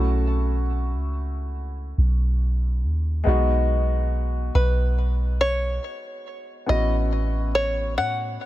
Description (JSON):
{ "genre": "contemporary R&B", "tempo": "70 BPM", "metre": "4/4", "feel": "swing 58% on 16ths", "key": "unclear", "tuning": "A4 = 440 Hz", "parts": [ { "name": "open-back banjo", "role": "melody", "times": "0.0-8.5 s", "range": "B4 to A5", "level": "-26 LUFS", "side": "equal", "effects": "ping-pong delay" }, { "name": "warm baby grand piano", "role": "accompaniment", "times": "0.0-8.4 s", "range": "G#3 to F#4", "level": "-29 LUFS", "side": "left 2 dB", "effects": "none" }, { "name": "soft 808-style bass", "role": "bass", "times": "0.0-8.4 s", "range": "A1 to A2", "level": "-22 LUFS", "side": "equal", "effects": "none" } ], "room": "small room ambience", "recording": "none", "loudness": "-21 LUFS", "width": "side -15 dB against mid", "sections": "0.0-8.5 A section", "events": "none", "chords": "0.0 B9sus4; 3.3 B69; 6.7 A69" }